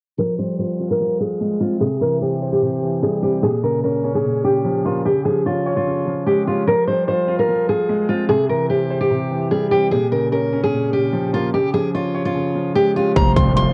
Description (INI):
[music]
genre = hip hop, trap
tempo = 148 BPM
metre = 4/4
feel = half-time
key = F harmonic minor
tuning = A4 = 444 Hz
[part]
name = fingerpicked steel-string acoustic guitar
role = melody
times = 0.2-13.7 s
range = F4 to C6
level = -21 LUFS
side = equal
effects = low-pass filter, cassette tape
[part]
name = dark baby grand piano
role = accompaniment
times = 0.2-13.7 s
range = Bb2 to Db5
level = -24 LUFS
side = equal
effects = low-pass filter
[part]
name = pipe organ, sparkling flutes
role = sustained chords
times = 13.2-13.7 s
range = F3 to C5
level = -28 LUFS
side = equal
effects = none
[part]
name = growling 808-style bass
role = bass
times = 13.2-13.7 s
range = F1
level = -20 LUFS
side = equal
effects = none
[part]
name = trap drum kit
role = drums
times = 13.2-13.7 s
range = hi-hat, kick drum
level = -20 LUFS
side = equal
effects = cassette tape
[part]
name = impact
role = sound effects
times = 13.2-13.7 s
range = none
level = -26 LUFS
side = equal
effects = none
[sound]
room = light reverb, studio ambience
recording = home recording on cassette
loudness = -19 LUFS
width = mono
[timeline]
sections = 0.2-13.2 A section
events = filter sweep 0.2-13.2; impact 13.2-13.7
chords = 0.2 Fmadd9; 1.8 C; 3.4 Bbm; 5.1 Db; 6.7 Fmadd9; 8.3 C; 9.9 Bbm; 11.5 Db; 13.2 Fsus2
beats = | 0.19 0.59 1.00 1.40 | 1.81 2.21 2.62 3.03 | 3.43 3.84 4.24 4.65 | 5.05 5.46 5.86 6.27 | 6.67 7.08 7.49 7.89 | 8.30 8.70 9.11 9.51 | 9.92 10.32 10.73 11.13 | 11.54 11.94 12.35 12.76 | 13.16 13.57